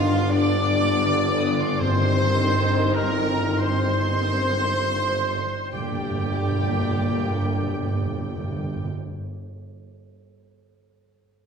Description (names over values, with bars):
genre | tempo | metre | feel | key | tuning
classical, slow romantic movement for symphony orchestra | 26-41 BPM (dotted quarters) | 6/8 | rubato | G minor | A4 = 442 Hz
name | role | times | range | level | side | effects
muted studio violin section | melody | 0.0-8.9 s | F5 to Eb6 | -31 LUFS | left 2 dB | none
muted chamber violin section | second line | 0.0-8.9 s | F4 to G5 | -33 LUFS | equal | none
muted symphonic viola section | accompaniment | 0.0-8.9 s | D3 to D4 | -31 LUFS | right 1 dB | none
dark French horn section | sustained chords | 0.0-8.9 s | Bb3 to Eb4 | -28 LUFS | left 5 dB | none
concert harp | arpeggios | 0.0-9.6 s | G2 to D5 | -33 LUFS | left 3 dB | none
clear trumpet section | stabs | 0.0-8.9 s | F4 to D5 | -31 LUFS | right 3 dB | none
clear tuba | bass | 0.0-8.9 s | G1 | -33 LUFS | right 1 dB | none
muted chamber cello section | bass | 0.0-8.9 s | G2 | -31 LUFS | right 2 dB | none
muted symphonic double bass section | bass | 0.0-8.9 s | G1 | -29 LUFS | right 2 dB | none
timpani | percussion | 0.0-8.9 s | G2 | -29 LUFS | right 2 dB | none
bright clarinet | second line | 0.3-8.9 s | G4 to D5 | -32 LUFS | left 2 dB | none
mellow oboe | second line | 0.3-8.9 s | Bb4 to D5 | -32 LUFS | right 1 dB | none
room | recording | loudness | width
wet recital hall reverb, RT60 1.3 s | heard from further back in the room | -20 LUFS | side -6 dB against mid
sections
0.0-5.7 A section; 5.7-9.8 B section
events
slowing down 0.0-5.7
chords
0.0 G7; 1.8 Cm/G; 5.7 Gm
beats
0.30 | 1.81 3.60 | 5.74 7.78